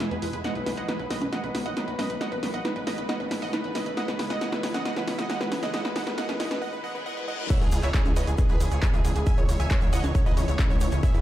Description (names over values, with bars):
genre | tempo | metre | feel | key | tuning
uplifting trance | 136 BPM | 4/4 | straight | unclear | A4 = 440 Hz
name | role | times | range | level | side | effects
wide unison pluck | arpeggios | 0.0-11.2 s | C#4 to B5 | -37 LUFS | right 2 dB | phaser, sidechain pumping, tape echo
punchy analog drum machine | drums | 0.0-11.2 s | congas, crash cymbal, handclaps, hi-hat, snare drum | -31 LUFS | equal | none
supersaw stab | melody | 0.1-11.2 s | E4 to G#5 | -32 LUFS | right 1 dB | sidechain pumping, low-pass filter, ping-pong delay
gritty driven synth bass | bass | 0.1-11.2 s | A1 to E2 | -30 LUFS | equal | distortion, sidechain pumping
riser and reverse cymbal | sound effects | 3.8-7.5 s | none | -40 LUFS | left 3 dB | none
electronic kick drum | drums | 7.5-11.1 s | none | -23 LUFS | equal | none
egg shaker | percussion | 7.5-11.2 s | none | -46 LUFS | left 2 dB | none
room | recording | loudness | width
light reverb, digital ambience | played on a big sound system in a bare room, large studio reverb, high-pass filter | -24 LUFS | side -13 dB against mid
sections
0.0-7.5 A section; 7.5-11.2 B section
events
build-up 0.0-7.5; drum fill 0.0-6.6; filter sweep 0.0-7.5; break 6.6-7.5; reverse cymbal 6.6-7.5; drop 7.5-11.2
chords
0.4 B; 2.2 A; 4.0 C#m; 5.7 E; 7.5 C#m